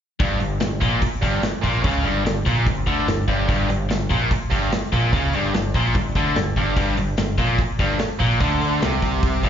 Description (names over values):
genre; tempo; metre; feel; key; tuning
classic rock; 146 BPM; 4/4; straight; unclear; A4 = 440 Hz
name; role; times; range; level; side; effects
biting overdriven guitar; riff; 0.2-9.5 s; G2 to D3; -25 LUFS; left 11 dB; slapback echo
tight distorted guitar; riff; 0.2-9.5 s; G2 to D3; -24 LUFS; right 8 dB; distortion, slapback echo
growling picked electric bass; bass; 0.2-9.5 s; G1 to D2; -24 LUFS; equal; overdrive
big rock drum kit; drums; 0.2-9.5 s; hi-hat, kick drum, snare drum; -23 LUFS; equal; none
room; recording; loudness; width
light reverb; live gig heard through the venue's PA, club reverb, nothing above 7.5 kHz; -18 LUFS; side -9 dB against mid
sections
0.2-9.5 A section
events
none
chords
0.2 G5